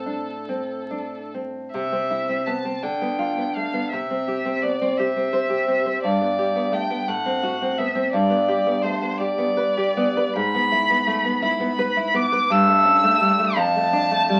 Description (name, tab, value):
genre	romantic duo for violin and classical guitar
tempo	47-59 BPM (dotted quarters)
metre	6/8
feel	rubato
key	C major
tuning	A4 = 440 Hz
part	clear violin	melody	0.0-14.4 s	A4 to E6	-24 LUFS	equal	none
part	nylon-string guitar	accompaniment	0.0-14.4 s	F2 to C5	-25 LUFS	equal	none
room	wet small room ambience, RT60 0.5 s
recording	very old 78 rpm record, vinyl crackle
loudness	-22 LUFS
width	mono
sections	0.0-1.7 A section; 1.7-14.4 B section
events	none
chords	0.0 Am; 1.7 C; 2.8 Bdim/D; 3.9 C; 6.0 G; 7.1 F#dim/A; 8.1 G; 10.3 E/G#; 12.5 A7/G; 13.6 Dm/F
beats	0.49 | 1.73 2.83 | 3.92 4.99 | 6.04 7.09 | 8.12 9.18 | 10.34 11.42 | 12.50 13.57